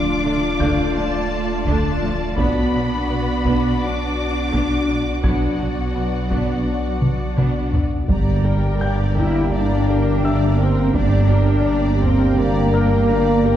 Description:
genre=cinematic, hybrid orchestral and electronic film score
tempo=84 BPM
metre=4/4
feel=straight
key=G dorian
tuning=A4 = 440 Hz
part: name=rich symphonic violin section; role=melody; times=0.0-13.6 s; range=F#5 to D6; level=-30 LUFS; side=left 3 dB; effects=none
part: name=warm symphonic violin section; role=second line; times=0.0-13.6 s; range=F4 to D5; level=-30 LUFS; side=left 3 dB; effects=none
part: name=chorused pulse-width pad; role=sustained chords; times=0.0-13.6 s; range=A3 to D5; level=-26 LUFS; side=equal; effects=none
part: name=tight sequenced synth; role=arpeggios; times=0.0-13.6 s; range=D3 to B4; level=-30 LUFS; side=right 1 dB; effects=none
part: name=saturated sub bass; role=bass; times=0.0-13.6 s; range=D1 to B1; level=-25 LUFS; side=equal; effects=none
part: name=warm symphonic cello section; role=bass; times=0.0-13.6 s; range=F#3 to E4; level=-25 LUFS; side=right 1 dB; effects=none
part: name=clear concert grand piano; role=texture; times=0.0-13.6 s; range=E5 to Ab6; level=-36 LUFS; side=left 2 dB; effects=digital delay
part: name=warm symphonic viola section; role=accompaniment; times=0.2-13.6 s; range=F3 to Bb4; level=-29 LUFS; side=right 1 dB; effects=none
part: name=warm symphonic double bass section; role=bass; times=0.2-13.6 s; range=G1 to D2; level=-22 LUFS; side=right 2 dB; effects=none
part: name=taiko ensemble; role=drums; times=0.6-12.4 s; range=none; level=-24 LUFS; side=equal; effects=none
part: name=warm trombone section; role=sustained chords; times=0.9-13.6 s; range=F3 to D4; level=-30 LUFS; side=right 2 dB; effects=none
part: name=dark French horn section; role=sustained chords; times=8.1-13.6 s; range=G3 to E4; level=-22 LUFS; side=left 2 dB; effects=none
room=wet scoring stage reverb, RT60 1.7 s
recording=heard from further back in the room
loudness=-16 LUFS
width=side -11 dB against mid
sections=0.0-8.1 A section; 8.1-13.6 B section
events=drum fill 7.0-8.1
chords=0.0 Dm; 2.4 Bm; 8.1 Gm

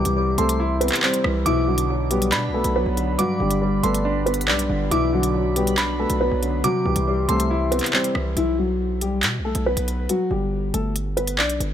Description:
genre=hip hop, drill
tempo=139 BPM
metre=4/4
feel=half-time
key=B phrygian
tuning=A4 = 440 Hz
part: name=dark grand piano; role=melody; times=0.0-11.6 s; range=E3 to D5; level=-24 LUFS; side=left 2 dB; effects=digital delay
part: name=glassy synth bell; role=second line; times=0.0-7.9 s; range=B5 to D6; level=-28 LUFS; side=right 2 dB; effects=chorus, tremolo, digital delay
part: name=dark concert grand piano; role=accompaniment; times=0.0-8.4 s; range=G2 to E4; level=-26 LUFS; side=right 1 dB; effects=none
part: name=dark analog pad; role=sustained chords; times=0.3-8.3 s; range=F#4 to C6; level=-33 LUFS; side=equal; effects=chorus, phaser
part: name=distorted 808-style bass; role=bass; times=0.0-11.7 s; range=G1 to B2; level=-25 LUFS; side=equal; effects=distortion
part: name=drill drum kit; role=drums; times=0.1-11.7 s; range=handclaps, hi-hat, rim click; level=-24 LUFS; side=equal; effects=none
room=light reverb, digital ambience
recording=none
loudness=-19 LUFS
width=side -10 dB against mid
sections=0.0-8.4 A section; 8.4-11.7 B section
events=none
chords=0.0 C; 1.5 Bm; 3.2 G; 4.9 Bm; 6.6 C; 8.4 B5; 10.1 G

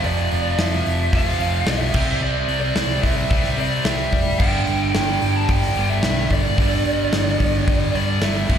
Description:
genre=hard rock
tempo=110 BPM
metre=4/4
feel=straight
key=unclear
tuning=A4 = 440 Hz
part: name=lead guitar through a small cranked amp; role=melody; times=0.0-8.6 s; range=D5 to A5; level=-24 LUFS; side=right 1 dB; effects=overdrive, slapback echo
part: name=high-gain distorted guitar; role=riff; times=0.0-8.6 s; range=F2 to C4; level=-26 LUFS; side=left 12 dB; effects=distortion
part: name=overdriven electric guitar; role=riff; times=0.0-8.6 s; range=F2 to C4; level=-25 LUFS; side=right 12 dB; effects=spring reverb
part: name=hollow-body short-scale picked electric bass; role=bass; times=0.0-8.6 s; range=F1 to C3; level=-23 LUFS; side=left 1 dB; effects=none
part: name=gated 80s drum kit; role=drums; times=0.0-8.6 s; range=crash cymbal, hi-hat, kick drum, snare drum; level=-23 LUFS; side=left 1 dB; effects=none
room=small room ambience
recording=live gig heard through the venue's PA, recital hall reverb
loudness=-17 LUFS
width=side -8 dB against mid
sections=0.0-8.6 A section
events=none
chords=0.0 F5; 1.9 C; 4.4 G5

